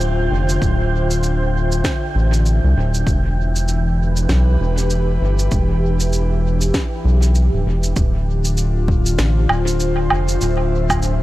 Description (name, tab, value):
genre	ambient dub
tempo	98 BPM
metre	4/4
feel	swing 59% on 16ths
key	D dorian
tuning	A4 = 443 Hz
part	airy breathy pad	sustained chords	0.0-11.2 s	D3 to E5	-22 LUFS	left 1 dB	chorus
part	round analog bass	bass	0.0-11.2 s	D1 to C2	-17 LUFS	equal	tube saturation
part	electronic shaker, snare drum and woodblock	drums	0.0-11.2 s	none	-24 LUFS	right 1 dB	dub echo
part	wind-like tuned noise texture	texture	0.0-8.0 s	G5	-31 LUFS	right 4 dB	built-in reverb
part	electronic kick drum	drums	0.6-11.0 s	none	-20 LUFS	equal	overdrive
room	light reverb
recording	none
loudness	-15 LUFS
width	side -16 dB against mid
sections	0.0-8.0 A section; 8.0-11.2 B section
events	none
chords	0.0 Dm7; 3.1 Em7; 8.0 Dm7